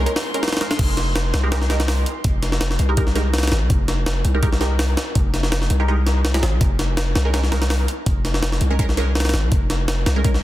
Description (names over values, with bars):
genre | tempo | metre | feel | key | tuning
drum and bass, jungle | 165 BPM | 4/4 | swing 53% on 16ths | F minor | A4 = 440 Hz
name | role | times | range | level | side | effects
filtered dub chord stab | stabs | 0.0-10.3 s | Ab3 to Bb4 | -28 LUFS | right 3 dB | phaser, dub echo
long sustained 808-style bass | bass | 0.0-10.4 s | F1 to C2 | -20 LUFS | equal | none
drifting glass-harmonics texture | texture | 0.0-0.8 s | C6 | -34 LUFS | right 2 dB | chorus, built-in reverb
jungle sampler-style drum kit | drums | 0.1-10.4 s | crash cymbal, hi-hat, kick drum, snare drum | -21 LUFS | equal | none
room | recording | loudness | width
little or no reverb | dense, heavily limited modern master | -17 LUFS | side -15 dB against mid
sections
0.8-10.4 A section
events
break 0.1-0.8; drop 0.8-10.4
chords
0.0 Bbm7; 0.8 Fm11; 6.6 Bbm7/F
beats
0.07 0.43 | 0.79 1.16 1.52 1.88 | 2.25 2.61 2.97 3.34 | 3.70 4.07 4.43 4.79 | 5.16 5.52 5.88 6.25 | 6.61 6.97 7.34 7.70 | 8.06 8.43 8.79 9.16 | 9.52 9.88 10.25